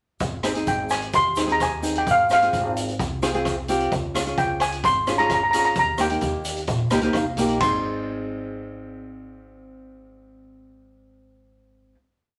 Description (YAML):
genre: calypso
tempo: 130 BPM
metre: 4/4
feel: straight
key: Ab major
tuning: A4 = 440 Hz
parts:
  - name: upright bass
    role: bass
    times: 0.2-11.9 s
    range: Ab1 to Eb2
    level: -34 LUFS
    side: equal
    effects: none
  - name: street-band drum kit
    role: drums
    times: 0.2-7.7 s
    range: hi-hat, kick drum, ride cymbal, rim click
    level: -31 LUFS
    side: equal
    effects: none
  - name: tube shaker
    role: percussion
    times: 0.2-7.8 s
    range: none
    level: -41 LUFS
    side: equal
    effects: none
  - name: nylon-string guitar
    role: accompaniment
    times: 0.4-12.0 s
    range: Bb3 to F5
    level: -28 LUFS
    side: equal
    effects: none
  - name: steel pan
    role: melody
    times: 0.7-11.9 s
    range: F5 to C6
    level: -23 LUFS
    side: equal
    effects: none
room: wet studio reverb, RT60 0.7 s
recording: none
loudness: -22 LUFS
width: mono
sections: 0.2-7.6 verse; 7.6-11.3 final chord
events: nylon-string guitar fill 6.7-7.6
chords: 0.2 Ab; 2.1 Fm/Ab; 3.9 Db; 5.8 Ebadd9; 7.6 Ab